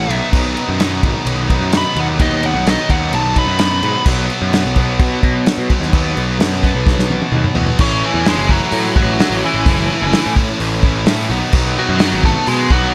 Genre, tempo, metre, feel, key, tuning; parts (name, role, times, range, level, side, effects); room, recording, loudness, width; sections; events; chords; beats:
quiet-loud alternative rock; 128 BPM; 4/4; straight; A4 = 442 Hz
nasal lead guitar with a parked wah; melody; 0.0-4.0, 7.8-12.9 s; E3 to B5; -21 LUFS; equal; overdrive, slapback echo
distorted electric guitar; riff; 0.0-12.9 s; A2 to E4; -24 LUFS; equal; overdrive
distorted electric guitar; riff; 0.0-12.9 s; A2 to F#4; -24 LUFS; equal; distortion
fuzz picked electric bass; bass; 0.0-12.9 s; F#1 to B2; -22 LUFS; equal; overdrive
loose indie drum kit; drums; 0.1-12.8 s; crash cymbal, hi-hat, kick drum, ride cymbal, snare drum, toms; -19 LUFS; equal
small room ambience; -15 LUFS; mono
0.0-4.1 A section; 4.1-7.8 B section; 7.8-12.9 C section
lead electric guitar solo 0.0-4.1; drum fill 6.9-7.8
0.1 B; 4.1 B5; 7.8 A6; 11.3 B
| 0.33 0.80 1.27 1.73 | 2.20 2.67 3.13 3.60 | 4.07 4.53 5.00 5.47 | 5.93 6.40 6.87 7.33 | 7.80 8.27 8.73 9.20 | 9.67 10.13 10.60 11.07 | 11.54 12.00 12.47 12.94